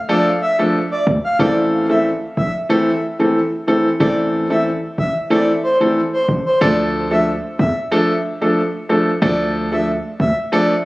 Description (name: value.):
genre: dancehall.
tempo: 92 BPM.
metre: 4/4.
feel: straight.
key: D minor.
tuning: A4 = 440 Hz.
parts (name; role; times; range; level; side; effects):
breathy flute-like synth lead; melody; 0.1-10.7 s; C5 to F5; -20 LUFS; equal; chorus, tremolo, digital delay.
warm grand piano; accompaniment; 0.1-10.7 s; E3 to A4; -16 LUFS; equal; none.
hard-hitting 808-style bass; bass; 1.1-10.3 s; A1 to E2; -21 LUFS; equal; none.
room: moderate lush hall reverb, RT60 2.7 s.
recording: recorded on a phone in the room, club reverb, compression.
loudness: -15 LUFS.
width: side -20 dB against mid.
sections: 0.0-10.8 A section.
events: none.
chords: 0.0 Dm; 1.4 Am; 6.6 Dm.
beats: 0.09 0.74 | 1.39 2.05 2.70 3.35 | 4.00 4.66 5.31 5.96 | 6.61 7.26 7.92 8.57 | 9.22 9.87 10.52.